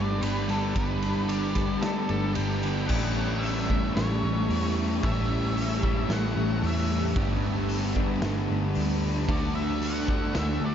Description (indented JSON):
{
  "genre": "rock, shoegaze and dream pop",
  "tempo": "113 BPM",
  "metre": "4/4",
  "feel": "straight",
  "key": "A mixolydian",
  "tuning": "A4 = 444 Hz",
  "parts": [
    { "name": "octave-fuzz lead guitar", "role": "melody", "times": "0.0-10.7 s", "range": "A4 to A5", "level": "-35 LUFS", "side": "equal", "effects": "distortion, diffuse ambient delay" },
    { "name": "ethereal airy pad", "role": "sustained chords", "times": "0.0-10.7 s", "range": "D4 to C#6", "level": "-37 LUFS", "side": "right 1 dB", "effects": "ensemble chorus, built-in reverb" },
    { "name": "twelve-string electric guitar", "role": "arpeggios", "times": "0.0-10.7 s", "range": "G3 to A4", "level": "-38 LUFS", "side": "left 6 dB", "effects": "none" },
    { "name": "raw garage guitar", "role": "riff", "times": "0.0-10.7 s", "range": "G2 to G4", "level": "-32 LUFS", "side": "right 7 dB", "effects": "overdrive, reverse reverb" },
    { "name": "thick fuzz guitar", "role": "riff", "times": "0.0-10.7 s", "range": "G2 to D4", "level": "-31 LUFS", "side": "left 6 dB", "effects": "distortion, analog chorus" },
    { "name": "vintage muted picked electric bass", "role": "bass", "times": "0.0-10.7 s", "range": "G1 to E2", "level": "-30 LUFS", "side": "equal", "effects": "none" },
    { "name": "raw garage drum kit", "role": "drums", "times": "0.2-10.5 s", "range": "crash cymbal, hi-hat, kick drum, ride cymbal, snare drum", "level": "-31 LUFS", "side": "equal", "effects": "none" }
  ],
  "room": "wet huge ambient reverb, RT60 7.8 s",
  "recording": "dreamy mix soaked in reverb, nothing above 7.5 kHz",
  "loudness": "-24 LUFS",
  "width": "side -9 dB against mid",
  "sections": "0.0-2.9 A section; 2.9-10.7 B section",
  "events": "none",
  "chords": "0.0 Gadd9; 2.9 A7; 7.2 Gadd9; 9.3 Dmaj7"
}